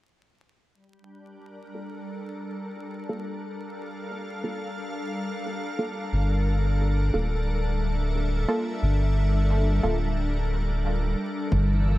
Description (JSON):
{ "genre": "ambient dub", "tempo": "89 BPM", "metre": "4/4", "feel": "straight", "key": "G dorian", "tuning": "A4 = 439 Hz", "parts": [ { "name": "soft additive organ-like pad", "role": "sustained chords", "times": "1.1-12.0 s", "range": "G3 to F5", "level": "-31 LUFS", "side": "left 1 dB", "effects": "ensemble chorus, built-in reverb" }, { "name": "filtered dub chord stab", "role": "stabs", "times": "1.7-10.0 s", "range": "Bb3 to A4", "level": "-32 LUFS", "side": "right 2 dB", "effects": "chorus, dub echo" }, { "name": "soft dub sub bass", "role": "bass", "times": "6.1-12.0 s", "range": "D1 to G1", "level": "-23 LUFS", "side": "equal", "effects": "none" }, { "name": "electronic kick drum", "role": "drums", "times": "11.5-11.7 s", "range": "none", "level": "-27 LUFS", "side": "equal", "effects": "none" }, { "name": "wind-like tuned noise texture", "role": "texture", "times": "11.6-12.0 s", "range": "E3 to E6", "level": "-36 LUFS", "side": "right 1 dB", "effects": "built-in reverb" } ], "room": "digital ambience", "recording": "echo-heavy mix, vinyl crackle", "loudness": "-24 LUFS", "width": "side -17 dB against mid", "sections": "0.7-11.5 A section", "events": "filter sweep on synth stab 0.7-11.5", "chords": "0.7 Gm7" }